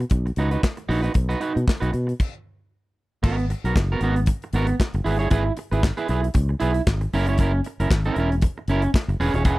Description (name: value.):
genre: disco.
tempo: 116 BPM.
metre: 4/4.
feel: swing 56% on 16ths.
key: G# minor.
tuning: A4 = 440 Hz.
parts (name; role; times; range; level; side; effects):
electric guitar at the edge of break-up; accompaniment; 0.0-9.6 s; B3 to C#5; -25 LUFS; right 3 dB; none.
fingered electric bass; bass; 0.0-9.6 s; D#1 to B2; -22 LUFS; equal; none.
modern studio drum kit; drums; 0.0-9.6 s; crash cymbal, handclaps, hi-hat, kick drum, snare drum; -21 LUFS; equal; none.
room: studio ambience.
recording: dry, close 1970s-style studio recording.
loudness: -20 LUFS.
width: side -19 dB against mid.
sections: 0.0-3.2 A section; 3.2-9.6 B section.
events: stop 2.2-3.2.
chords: 0.0 B; 3.2 G#m9; 5.1 C#m7; 7.1 F#7.